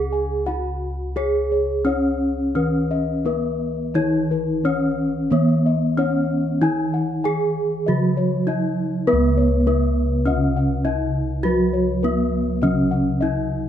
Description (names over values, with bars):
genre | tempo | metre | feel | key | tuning
Javanese gamelan | 86-102 BPM | 4/4 | straight | C# slendro | A4 = 437 Hz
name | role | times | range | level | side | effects
gamelan-type bronze metallophone | melody | 0.0-13.7 s | B3-25c to G#4 | -23 LUFS | right 1 dB | none
gamelan-type bossed gongs | arpeggios | 0.0-13.5 s | B4-25c to G#5 | -27 LUFS | left 10 dB | none
gamelan-type bossed gongs | bass | 0.0-13.7 s | C#2 to B4-25c | -23 LUFS | equal | none
gamelan-type bronze metallophone | accompaniment | 3.9-13.7 s | C#3 to B3-25c | -24 LUFS | right 3 dB | none
room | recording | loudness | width
light reverb | close, detailed microphones | -18 LUFS | side -10 dB against mid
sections
0.0-9.1 A section; 9.1-13.7 B section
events
none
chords
none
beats
0.46 | 1.16 1.85 2.55 3.25 | 3.95 4.64 5.31 5.97 | 6.62 7.25 7.87 8.48 | 9.08 9.67 10.26 10.85 | 11.45 12.04 12.63 13.22